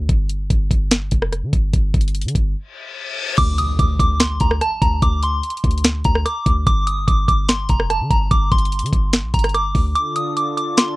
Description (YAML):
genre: hip hop, trap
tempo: 146 BPM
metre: 4/4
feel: half-time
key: G minor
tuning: A4 = 440 Hz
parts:
  - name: warm 808-style bass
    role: bass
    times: 0.0-9.9 s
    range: F1 to D3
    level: -21 LUFS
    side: equal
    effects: none
  - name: trap drum kit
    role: drums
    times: 0.1-10.9 s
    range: crash cymbal, hi-hat, kick drum, rim click, snare drum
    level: -18 LUFS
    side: equal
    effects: vintage 12-bit sampler grit
  - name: reverse cymbal and impact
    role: sound effects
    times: 2.7-5.0 s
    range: none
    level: -28 LUFS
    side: left 3 dB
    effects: none
  - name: delicate synth tine bell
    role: melody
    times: 3.4-10.9 s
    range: A5 to Eb6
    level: -21 LUFS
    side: equal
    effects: chorus, tremolo, low-pass filter, tape echo
  - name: warm analog pad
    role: sustained chords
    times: 10.0-11.0 s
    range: D3 to A4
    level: -25 LUFS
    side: equal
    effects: chorus
room: little or no reverb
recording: none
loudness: -16 LUFS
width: side -19 dB against mid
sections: 0.0-3.4 A section; 3.4-11.0 B section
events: break 0.0-3.4, 10.0-10.8; reverse cymbal 2.7-3.4; impact 3.4-5.0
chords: 0.1 G5; 3.4 Csus2/D; 6.7 G5; 10.0 Dm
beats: | 0.09 0.50 0.91 1.32 | 1.74 2.15 2.56 2.97 | 3.38 3.79 4.20 4.61 | 5.02 5.43 5.84 6.26 | 6.67 7.08 7.49 7.90 | 8.31 8.72 9.13 9.54 | 9.96 10.37 10.78